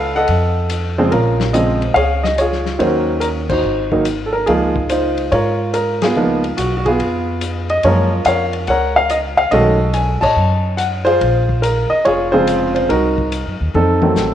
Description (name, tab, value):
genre	jazz piano trio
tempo	143 BPM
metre	4/4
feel	swing 67% on 8ths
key	Bb minor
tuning	A4 = 440 Hz
part	warm baby grand piano	melody	0.0-14.3 s	C#3 to A5	-15 LUFS	equal	none
part	upright bass	bass	0.0-14.3 s	F1 to Ab2	-20 LUFS	equal	none
part	vintage drum kit	drums	0.3-14.3 s	crash cymbal, hi-hat, kick drum, ride cymbal, snare drum, toms	-27 LUFS	left 6 dB	none
room	moderate plate reverb, RT60 2.0 s, small room reverb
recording	1960s-style stereo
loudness	-14 LUFS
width	side -10 dB against mid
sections	0.0-1.1 A section; 1.1-14.3 B section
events	band accent 3.4, 5.9, 10.2; drum fill 13.7-14.3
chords	0.3 F7b9; 1.1 Bbm9; 2.8 Ebm7; 3.6 Ab9; 4.5 Db69; 6.2 Db9; 7.8 Gbmaj7; 9.5 B13; 11.2 Bbm9; 12.9 Cm7b5; 13.7 F7b9